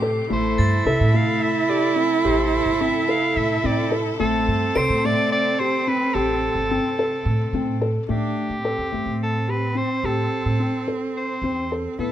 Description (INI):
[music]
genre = contemporary instrumental, chamber music in an uneven meter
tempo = 216 BPM (eighths)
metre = 7/8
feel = straight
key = A minor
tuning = A4 = 440 Hz
[part]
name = clear soprano saxophone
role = melody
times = 0.0-12.1 s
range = G4 to F5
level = -25 LUFS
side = left 1 dB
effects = none
[part]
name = warm cello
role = second line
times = 0.0-12.1 s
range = C4 to E4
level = -25 LUFS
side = right 5 dB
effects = none
[part]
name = clear studio string section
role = sustained chords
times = 0.0-8.1 s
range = C3 to A4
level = -31 LUFS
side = left 3 dB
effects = none
[part]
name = felt-muted upright piano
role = arpeggios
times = 0.0-12.1 s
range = A3 to A4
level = -26 LUFS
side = left 3 dB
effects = none
[part]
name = upright bass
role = bass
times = 0.0-12.1 s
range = G1 to A2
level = -25 LUFS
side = right 1 dB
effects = none
[part]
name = crotales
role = texture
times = 0.0-1.2, 4.8-5.4 s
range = A6 to D7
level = -34 LUFS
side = equal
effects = none
[sound]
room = light reverb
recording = close, detailed microphones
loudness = -19 LUFS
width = side -11 dB against mid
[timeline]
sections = 0.0-8.1 A section; 8.1-12.1 B section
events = none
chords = 0.0 Am7